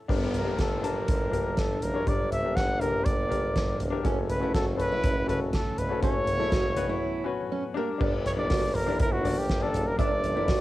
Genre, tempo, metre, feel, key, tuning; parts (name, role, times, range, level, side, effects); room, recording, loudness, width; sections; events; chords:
piano-driven pop; 121 BPM; 4/4; straight; A4 = 439 Hz
warm upright piano; accompaniment; 0.0-10.6 s; G2 to A5; -33 LUFS; left 5 dB; cassette tape, plate reverb
chorused pulse-width pad; sustained chords; 0.1-10.6 s; F#3 to D4; -38 LUFS; right 1 dB; cassette tape
clear tuba; bass; 0.1-10.6 s; E1 to G1; -32 LUFS; right 1 dB
soft-mallet drum kit; drums; 0.1-10.6 s; crash cymbal, hi-hat, kick drum, snare drum, toms; -29 LUFS; right 1 dB; cassette tape
downlifter; sound effects; 0.1-4.0 s; -40 LUFS; left 1 dB
breathy trumpet; melody; 0.4-10.6 s; F#4 to F#5; -30 LUFS; equal; cassette tape
fingerpicked steel-string acoustic guitar; riff; 4.1-10.6 s; Bb3 to F#4; -34 LUFS; right 6 dB; cassette tape
moderate small room reverb, RT60 0.6 s; home recording on cassette; -24 LUFS; side -16 dB against mid
0.1-8.0 A section; 8.0-10.6 B section
break 7.0-8.0
0.1 Gm; 4.0 F#m; 7.8 Gm